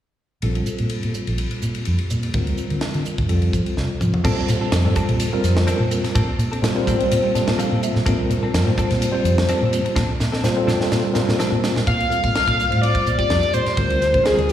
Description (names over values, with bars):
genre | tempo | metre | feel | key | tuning
electric jazz fusion | 126 BPM | 4/4 | swing 54% on 16ths | Bb major | A4 = 440 Hz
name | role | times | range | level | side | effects
mellow tine electric piano | accompaniment | 0.4-14.5 s | G3 to A5 | -23 LUFS | equal | fast stereo tremolo, wide subtle chorus, slapback echo
fretless electric bass | bass | 0.4-14.5 s | Bb1 to F3 | -21 LUFS | equal | none
tight funk drum kit | drums | 0.4-14.5 s | crash cymbal, hi-hat, kick drum, ride cymbal, snare drum, toms | -25 LUFS | equal | none
clean electric guitar | stabs | 4.2-11.8 s | F3 to A4 | -29 LUFS | left 1 dB | analog chorus, slapback echo
overdriven synth lead | melody | 11.9-14.5 s | Ab4 to F5 | -19 LUFS | left 1 dB | distortion, phaser, slapback echo
room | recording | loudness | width
light reverb, studio reverb | live gig heard through the venue's PA, recital hall reverb | -17 LUFS | side -11 dB against mid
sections
0.4-4.2 A section; 4.2-11.9 B section; 11.9-14.5 C section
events
drum fill 3.8-4.2, 10.0-11.9; tine electric piano fill 7.1-8.1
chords
0.4 Bb5; 2.3 Bb69/D; 3.3 Fadd9; 4.2 Bbmaj9; 11.9 Bb5; 13.8 Dm7b5